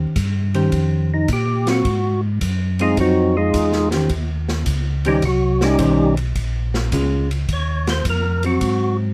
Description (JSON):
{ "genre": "soul jazz organ trio", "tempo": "106 BPM", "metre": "4/4", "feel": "swing 68% on 8ths", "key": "unclear", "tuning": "A4 = 440 Hz", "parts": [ { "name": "vintage hollow-body jazz guitar", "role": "accompaniment", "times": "0.0-9.1 s", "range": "Eb3 to C5", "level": "-23 LUFS", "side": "equal", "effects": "none" }, { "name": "mellow tonewheel organ", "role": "bass", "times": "0.0-9.1 s", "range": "Bb1 to Bb2", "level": "-23 LUFS", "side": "equal", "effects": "chorus vibrato, slow rotary speaker" }, { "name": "swinging big-band drum kit", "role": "drums", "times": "0.2-8.8 s", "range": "hi-hat, kick drum, ride cymbal, snare drum", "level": "-29 LUFS", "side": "equal", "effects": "none" }, { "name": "percussive tonewheel organ", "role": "melody", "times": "1.1-9.0 s", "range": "Gb3 to Db5", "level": "-21 LUFS", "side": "equal", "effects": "slow rotary speaker, overdrive" } ], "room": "moderate booth ambience, RT60 0.2 s", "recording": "vinyl crackle", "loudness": "-19 LUFS", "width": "mono", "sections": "0.0-9.1 A section", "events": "tonewheel organ solo 0.0-9.1", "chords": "0.0 Eb13; 1.8 Ab6; 4.1 Eb6; 6.4 Bbm7; 7.5 Ebsus2; 8.6 Ab7" }